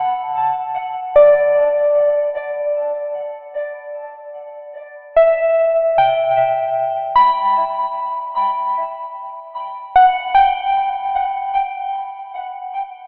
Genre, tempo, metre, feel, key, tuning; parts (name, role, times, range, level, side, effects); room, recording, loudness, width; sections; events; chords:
ambient; free time; E minor; A4 = 440 Hz
soft synth bell; solo; 0.0-13.1 s; D5 to B5; -14 LUFS; equal; chorus, phaser, diffuse ambient delay
wet cathedral reverb, RT60 5.4 s; AM radio sound; -14 LUFS; side -38 dB against mid
0.0-13.1 A section
0.0 Dadd9; 6.0 Emadd9; 12.4 N.C.